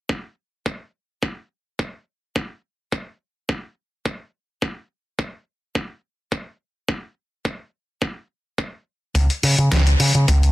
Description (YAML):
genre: nu-disco, nu disco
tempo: 106 BPM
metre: 4/4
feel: swing 53% on 16ths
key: unclear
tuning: A4 = 440 Hz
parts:
  - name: electronic kick drum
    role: drums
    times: 0.1-10.4 s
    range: none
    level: -24 LUFS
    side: equal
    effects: high-pass filter on kick
  - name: picked electric bass with an envelope filter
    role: bass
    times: 9.1-10.5 s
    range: C#2 to C#3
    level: -15 LUFS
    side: equal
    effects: tube saturation
  - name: dusty soul sampler-style drum kit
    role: drums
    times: 9.2-10.5 s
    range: hi-hat, snare drum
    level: -21 LUFS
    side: left 1 dB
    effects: none
room: little or no reverb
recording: dense, heavily limited modern master, lossy compression artefacts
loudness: -22 LUFS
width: side -18 dB against mid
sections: 0.1-10.5 A section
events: none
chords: none